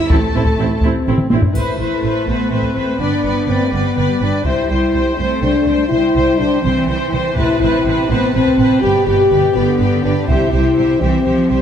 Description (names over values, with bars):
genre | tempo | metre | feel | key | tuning
cinematic, epic orchestral film score | 82 BPM (dotted quarters) | 6/8 | straight | A minor | A4 = 440 Hz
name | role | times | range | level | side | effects
rich symphonic violin section | melody | 0.0-11.6 s | D5 to A5 | -32 LUFS | left 4 dB | none
clear symphonic violin section | second line | 0.0-11.6 s | A4 to D5 | -25 LUFS | left 3 dB | none
rich symphonic cello section | bass | 0.0-11.6 s | B2 to E4 | -23 LUFS | right 4 dB | none
clear symphonic viola section | accompaniment | 0.1-11.6 s | C4 to C5 | -22 LUFS | equal | none
warm symphonic double bass section | bass | 0.1-11.6 s | G1 to C2 | -20 LUFS | right 3 dB | none
warm tuba | bass | 0.1-1.4 s | A1 | -26 LUFS | right 4 dB | none
solo taiko drums | drums | 0.1-11.2 s | none | -19 LUFS | equal | none
mellow French horn section | sustained chords | 0.6-11.6 s | B3 to G4 | -16 LUFS | left 3 dB | none
triangle | percussion | 1.6-2.5 s | none | -42 LUFS | left 2 dB | none
room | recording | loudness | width
moderate scoring stage reverb, RT60 1.8 s | none | -13 LUFS | side -8 dB against mid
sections
0.0-1.5 A section; 1.5-11.6 B section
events
drum fill 1.2-1.5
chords
0.1 Am; 1.5 Amadd9; 3.0 G; 4.5 C; 7.4 Amadd9; 8.8 G; 10.3 C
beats
| 0.09 0.82 | 1.54 2.27 | 3.00 3.73 | 4.45 5.18 | 5.91 6.64 | 7.37 8.09 | 8.82 9.55 | 10.28 11.00